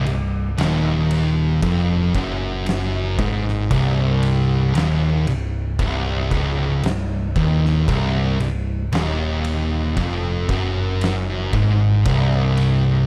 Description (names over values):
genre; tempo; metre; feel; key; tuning
stoner and doom metal; 58 BPM; 4/4; straight; C minor; A4 = 440 Hz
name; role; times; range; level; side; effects
fuzz guitar; riff; 0.0-13.1 s; C2 to Ab2; -25 LUFS; equal; distortion
thick fuzz guitar; riff; 0.0-13.1 s; C2 to Ab2; -24 LUFS; equal; distortion
overdriven picked electric bass; bass; 0.0-13.1 s; C1 to Ab1; -26 LUFS; equal; none
oversized low-tuned drum kit; drums; 0.1-12.8 s; kick drum, ride cymbal, snare drum; -29 LUFS; equal; none
room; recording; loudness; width
little or no reverb; dark, warm production; -20 LUFS; mono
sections
0.0-13.1 A section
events
none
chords
0.0 Cm